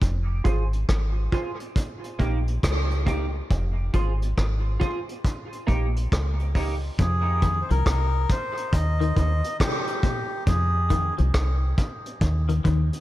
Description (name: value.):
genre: dub reggae.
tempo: 69 BPM.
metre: 4/4.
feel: swing 64% on 16ths.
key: F minor.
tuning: A4 = 440 Hz.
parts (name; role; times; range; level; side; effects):
deep dub fingered electric bass; bass; 0.0-12.9 s; F1 to F2; -23 LUFS; equal; none.
vintage brush drum kit; drums; 0.0-13.0 s; hi-hat, kick drum, rim click; -26 LUFS; equal; none.
clean electric guitar; accompaniment; 0.4-6.7 s; Bb3 to C5; -33 LUFS; right 3 dB; analog chorus, high-pass filter, low-pass filter, dub echo.
melodica; melody; 7.0-11.1 s; G4 to Eb5; -29 LUFS; left 1 dB; low-pass filter, dub echo.
semi-hollow electric guitar; arpeggios; 7.0-12.8 s; Bb2 to F3; -32 LUFS; left 6 dB; ensemble chorus, dub echo.
mellow tonewheel organ; accompaniment; 7.3 s; none; barely audible; none; none.
room: light reverb, small room reverb.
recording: echo-heavy mix.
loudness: -22 LUFS.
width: side -15 dB against mid.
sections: 0.0-7.0 A section; 7.0-13.0 B section.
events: break 0.0-7.0; filter sweep 0.0-7.0.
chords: 0.0 Fm; 1.8 Eb; 3.5 Fm; 5.2 Eb; 7.0 F5; 8.7 Eb; 10.5 F5; 12.2 Eb5.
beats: | 0.02 0.89 1.76 2.63 | 3.50 4.37 5.25 6.12 | 6.99 7.86 8.73 9.60 | 10.47 11.34 12.21.